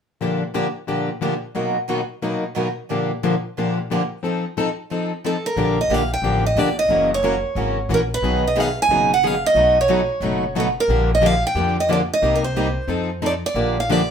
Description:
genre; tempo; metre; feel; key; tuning
acoustic string swing (jazz manouche); 180 BPM; 4/4; swing 62% on 8ths; unclear; A4 = 440 Hz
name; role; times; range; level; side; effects
picked plugged-in acoustic archtop guitar; accompaniment; 0.2-14.0 s; Bb2 to A4; -23 LUFS; left 4 dB; none
picked steel-string acoustic guitar; accompaniment; 0.2-14.0 s; Bb2 to B4; -26 LUFS; right 4 dB; none
picked steel-string acoustic guitar; melody; 5.3-14.1 s; A4 to G#5; -19 LUFS; right 2 dB; none
upright bass; bass; 5.6-14.1 s; Gb1 to F2; -25 LUFS; equal; none
room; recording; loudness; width
moderate studio reverb, RT60 0.5 s; band playing live in one room; -18 LUFS; side -7 dB against mid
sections
0.2-5.6 A section; 5.6-14.1 B section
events
none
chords
0.2 Bb6; 1.6 Bmaj7; 2.9 Bb6; 4.2 F7; 5.6 Bb6; 6.9 Gb7; 8.2 B6; 9.6 B9; 10.9 Bb6; 12.2 Cm7; 12.9 F7; 13.6 Bb6

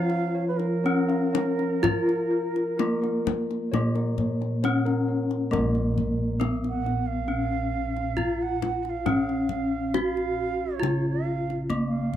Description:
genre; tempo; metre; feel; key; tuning
Javanese gamelan; 59-68 BPM; 4/4; straight; Bb pelog; A4 = 437 Hz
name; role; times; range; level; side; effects
gamelan-type bronze metallophone; melody; 0.0-12.2 s; Bb3 to Gb4; -27 LUFS; left 2 dB; none
bansuri; second line; 0.0-12.2 s; Bb4 to Gb5; -32 LUFS; right 7 dB; slapback echo
gamelan-type bossed gongs; arpeggios; 0.0-5.3 s; Bb4 to F5; -34 LUFS; left 4 dB; none
gamelan-type bossed gongs; bass; 0.0-12.2 s; Bb1 to Bb4; -28 LUFS; right 1 dB; none
kendang; percussion; 0.1-12.2 s; none; -32 LUFS; left 8 dB; none
room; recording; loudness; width
small room ambience; dry, close 1970s-style studio recording; -23 LUFS; side -11 dB against mid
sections
0.0-5.5 A section; 5.5-12.2 B section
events
none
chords
none

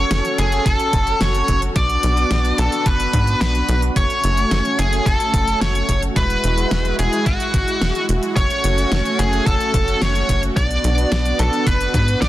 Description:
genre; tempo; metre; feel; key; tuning
synthwave; 109 BPM; 4/4; straight; F# minor; A4 = 441 Hz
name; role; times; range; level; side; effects
smooth overdriven lead guitar; melody; 0.0-12.3 s; F#4 to D5; -20 LUFS; equal; tape echo
soft supersaw; sustained chords; 0.0-12.3 s; G#3 to A4; -24 LUFS; equal; sidechain pumping
tight sequencer bass; bass; 0.0-12.3 s; E1 to G#2; -20 LUFS; equal; sidechain pumping
pop drum kit; drums; 0.1-12.3 s; hi-hat, snare drum; -26 LUFS; equal; none
electronic kick drum; drums; 0.7-12.1 s; none; -21 LUFS; equal; overdrive
room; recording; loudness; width
light reverb, digital ambience; dense, heavily limited modern master; -16 LUFS; side -14 dB against mid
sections
0.0-12.3 A section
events
none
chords
0.0 F#m; 1.8 Bm; 4.0 F#m; 6.2 Eadd9; 8.4 F#m; 10.6 Bm

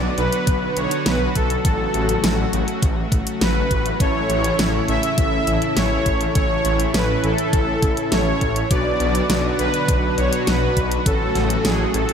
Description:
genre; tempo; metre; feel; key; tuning
synthwave; 102 BPM; 4/4; straight; A major; A4 = 440 Hz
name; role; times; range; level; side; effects
soft supersaw; melody; 0.0-12.1 s; G#4 to E5; -22 LUFS; equal; ping-pong delay
lush unison pad; sustained chords; 0.0-12.1 s; C#3 to F#4; -25 LUFS; equal; chorus, vintage 12-bit sampler grit, sidechain pumping
wide detuned saw bass; bass; 0.0-12.0 s; A1 to B1; -23 LUFS; equal; chorus, sidechain pumping
pop drum kit; drums; 0.2-12.1 s; hi-hat, snare drum; -24 LUFS; equal; none
electronic kick drum; drums; 0.5-11.2 s; none; -20 LUFS; equal; none
analog synth brass; stabs; 4.0-12.1 s; A2 to B4; -26 LUFS; left 2 dB; chorus
room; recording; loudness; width
light reverb, digital ambience; none; -17 LUFS; side -7 dB against mid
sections
0.0-12.1 A section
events
none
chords
0.0 Bm; 1.6 F#m/A; 4.0 A; 8.7 Bm; 11.1 F#m/A

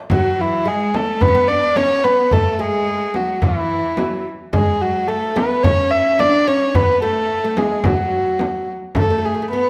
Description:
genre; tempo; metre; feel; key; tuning
Turkish makam ensemble; 108 BPM; 4/4; straight; A makam rast; A4 = 442 Hz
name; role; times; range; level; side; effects
warm kamancheh; melody; 0.1-9.7 s; E4 to E5; -20 LUFS; equal; none
clear chamber cello section; second line; 0.1-9.7 s; E3 to D4; -28 LUFS; equal; none
oud; second line; 0.1-9.7 s; E3 to D4; -27 LUFS; equal; none
darbuka; percussion; 0.1-9.7 s; none; -24 LUFS; equal; none
frame drum; percussion; 0.1-9.1 s; none; -26 LUFS; equal; none
room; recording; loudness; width
wet recital hall reverb, RT60 1.6 s; none; -17 LUFS; mono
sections
0.1-9.7 A section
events
none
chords
none

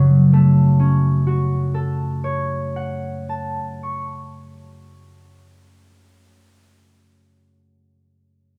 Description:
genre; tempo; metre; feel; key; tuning
classical, solo harp piece; 39 BPM; 4/4; rubato; F# minor; A4 = 440 Hz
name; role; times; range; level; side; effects
concert harp; solo; 0.0-6.8 s; F#2 to C#6; -19 LUFS; equal; none
room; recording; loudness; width
wet recital hall reverb, RT60 1.5 s; close, detailed microphones; -19 LUFS; mono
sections
0.0-5.3 A section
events
none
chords
0.0 F#m

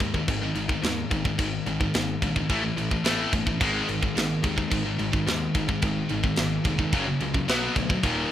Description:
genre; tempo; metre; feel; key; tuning
heavy metal; 108 BPM; 4/4; straight; unclear; A4 = 441 Hz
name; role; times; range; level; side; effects
high-gain distorted guitar; riff; 0.0-8.3 s; Eb2 to B3; -27 LUFS; left 4 dB; distortion
high-gain distorted guitar; riff; 0.0-8.3 s; Eb2 to B3; -32 LUFS; right 11 dB; distortion
overdriven picked electric bass; bass; 0.0-8.2 s; Eb1 to Eb2; -33 LUFS; right 1 dB; none
tight metal drum kit; drums; 0.0-8.2 s; crash cymbal, kick drum, snare drum; -27 LUFS; equal; none
overdriven semi-hollow guitar; riff; 3.6-8.3 s; Eb2 to B3; -35 LUFS; right 2 dB; none
room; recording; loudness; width
light reverb; rough home demo mix; -23 LUFS; side -11 dB against mid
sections
0.0-8.3 A section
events
none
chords
0.0 Ab5; 2.5 A5; 3.6 Ab5; 6.9 Gb5; 7.5 B5

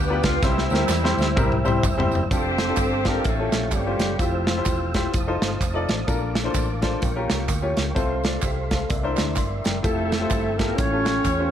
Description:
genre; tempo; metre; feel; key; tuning
uptempo gospel; 128 BPM; 4/4; swing 60% on 8ths; F major; A4 = 440 Hz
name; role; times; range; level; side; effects
dark horn section; melody; 0.0-5.1, 9.8-11.5 s; G3 to C#5; -28 LUFS; left 3 dB; none
clear baby grand piano; accompaniment; 0.0-11.5 s; G2 to C6; -27 LUFS; left 2 dB; none
percussive tonewheel organ; sustained chords; 0.0-11.5 s; A4 to E6; -31 LUFS; right 1 dB; slow rotary speaker, chorus vibrato
hollow-body short-scale fingered electric bass; bass; 0.0-11.5 s; E1 to E2; -27 LUFS; equal; none
modern studio drum kit; drums; 0.2-11.4 s; hi-hat, kick drum, ride cymbal, snare drum, toms; -24 LUFS; equal; none
tambourine and handclaps; percussion; 0.2-11.4 s; none; -36 LUFS; right 6 dB; none
dark alto saxophone; melody; 2.3-5.1, 9.8-11.5 s; F3 to C#4; -27 LUFS; right 4 dB; none
room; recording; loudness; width
light reverb; none; -20 LUFS; side -10 dB against mid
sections
0.0-2.3 A section; 2.3-11.5 B section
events
drum fill 0.4-2.3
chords
0.4 C; 2.3 F69; 3.3 A7alt; 4.2 Fmaj9; 5.1 F7; 6.1 Bbmaj7; 7.0 Bbm6; 8.0 F/C; 8.9 C9; 9.8 Fmaj9; 10.8 A7alt

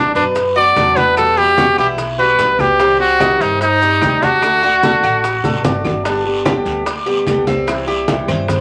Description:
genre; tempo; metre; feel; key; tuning
latin, Cuban son and guajira; 148 BPM; 4/4; straight; G major; A4 = 445 Hz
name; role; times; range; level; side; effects
bright trumpet; melody; 0.0-5.9 s; D4 to D5; -15 LUFS; equal; none
nylon-string guitar; accompaniment; 0.0-8.5 s; B2 to G4; -23 LUFS; equal; none
Cuban tres; arpeggios; 0.0-8.6 s; B3 to D5; -24 LUFS; equal; none
upright bass; bass; 0.0-8.6 s; G1 to G2; -29 LUFS; equal; none
congas; percussion; 0.1-8.6 s; none; -23 LUFS; equal; none
guiro; percussion; 0.2-8.6 s; none; -33 LUFS; equal; none
maracas; percussion; 0.2-8.6 s; none; -40 LUFS; equal; none
bongos; percussion; 0.4-8.6 s; none; -29 LUFS; equal; none
claves; percussion; 0.8-8.5 s; none; -35 LUFS; equal; none
room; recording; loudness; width
moderate club reverb, RT60 0.5 s; vinyl crackle; -14 LUFS; mono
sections
0.0-6.1 A section; 6.1-8.6 B section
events
drum fill 5.4-6.1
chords
0.0 Bm; 1.2 Emadd9; 2.8 Cm; 4.4 D; 6.1 G; 7.7 C

